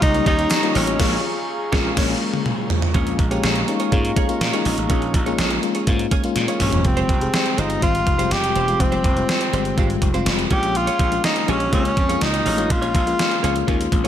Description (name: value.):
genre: 1980s-style pop.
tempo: 123 BPM.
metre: 4/4.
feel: straight.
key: Bb dorian.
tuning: A4 = 439 Hz.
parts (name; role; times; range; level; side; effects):
breathy tenor saxophone; melody; 0.0-1.2, 6.6-13.7 s; C4 to G4; -22 LUFS; equal; ping-pong delay.
FM electric piano with auto-pan; accompaniment; 0.0-14.1 s; G3 to Ab4; -24 LUFS; left 6 dB; none.
warm analog pad; sustained chords; 0.0-6.8 s; Ab3 to Db6; -29 LUFS; right 3 dB; chorus.
direct-recorded clean electric guitar; riff; 0.0-14.1 s; Ab3 to Db5; -30 LUFS; right 6 dB; lush chorus, ping-pong delay.
gritty slap bass; bass; 0.0-14.1 s; E1 to Bb2; -24 LUFS; right 1 dB; overdrive.
gated 80s digital drum machine; drums; 0.0-14.1 s; crash cymbal, hi-hat, kick drum, snare drum, tambourine, toms; -21 LUFS; right 1 dB; gated reverb, gated reverb snare, overdrive.
group handclap; percussion; 0.5-0.6 s; none; barely audible; none; none.
room: light reverb, digital ambience.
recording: none.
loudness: -17 LUFS.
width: side -10 dB against mid.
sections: 0.0-2.9 A section; 2.9-6.8 B section; 6.8-14.1 C section.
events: band accent 1.0-2.9; drum fill 2.0-2.9, 6.4-6.8.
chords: 0.0 Eb7; 1.0 Bbm7; 6.8 Fmadd9; 10.5 Bbm7.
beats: 0.02 0.51 | 1.00 1.48 1.97 2.46 | 2.95 3.44 3.92 4.41 | 4.90 5.39 5.87 6.36 | 6.85 7.34 7.83 8.31 | 8.80 9.29 9.78 10.26 | 10.75 11.24 11.73 12.22 | 12.70 13.19 13.68.